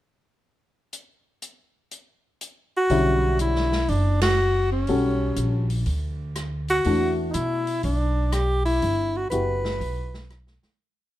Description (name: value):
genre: modal jazz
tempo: 122 BPM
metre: 4/4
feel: swing 67% on 8ths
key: B minor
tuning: A4 = 442 Hz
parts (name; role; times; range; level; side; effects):
- swinging big-band drum kit; drums; 0.9-10.8 s; hi-hat, ride cymbal, rim click, snare drum; -34 LUFS; right 1 dB; none
- warm tenor saxophone; melody; 2.8-10.3 s; C#4 to B4; -24 LUFS; equal; none
- warm upright piano; accompaniment; 2.9-10.1 s; D3 to A4; -26 LUFS; left 2 dB; none
- upright bass; bass; 2.9-10.7 s; F#1 to B2; -25 LUFS; equal; none
room: light reverb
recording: dark, warm production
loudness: -21 LUFS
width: side -14 dB against mid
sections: 0.9-2.9 pickup bar; 2.9-10.8 A section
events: band accent 4.1; fade-out 8.8-10.8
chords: 0.9 N.C.; 2.9 Bm9; 6.8 Em9